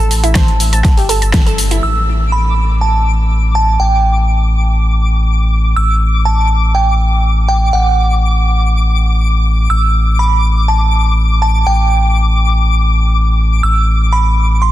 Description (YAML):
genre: progressive house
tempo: 122 BPM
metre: 4/4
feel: straight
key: unclear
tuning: A4 = 439 Hz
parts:
  - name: glassy synth bell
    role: melody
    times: 0.0-14.7 s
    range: F#5 to E6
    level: -18 LUFS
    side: right 3 dB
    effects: chorus, tape echo
  - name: analog pluck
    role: arpeggios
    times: 0.0-1.7 s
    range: E4 to A5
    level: -21 LUFS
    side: right 2 dB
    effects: chorus, sidechain pumping, tape echo
  - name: saturated sub bass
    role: bass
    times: 0.0-14.7 s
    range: G1 to A1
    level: -12 LUFS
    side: equal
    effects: tube saturation, sidechain pumping
  - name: big-room dance drum kit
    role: drums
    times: 0.0-1.8 s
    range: hi-hat, shaker, snare drum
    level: -20 LUFS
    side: left 1 dB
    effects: overdrive
  - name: twinkling granular texture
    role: texture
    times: 0.2-14.7 s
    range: D6 to E6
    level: -22 LUFS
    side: left 4 dB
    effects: built-in reverb, sidechain pumping
  - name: electronic kick drum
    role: drums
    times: 0.4-1.4 s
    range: none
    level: -12 LUFS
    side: equal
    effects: none
room: digital ambience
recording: dense, heavily limited modern master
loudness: -10 LUFS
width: side -14 dB against mid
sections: 0.0-1.8 A section; 1.8-14.7 B section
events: band accent 1.3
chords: 0.0 Am; 0.8 Gsus2; 1.8 D5/A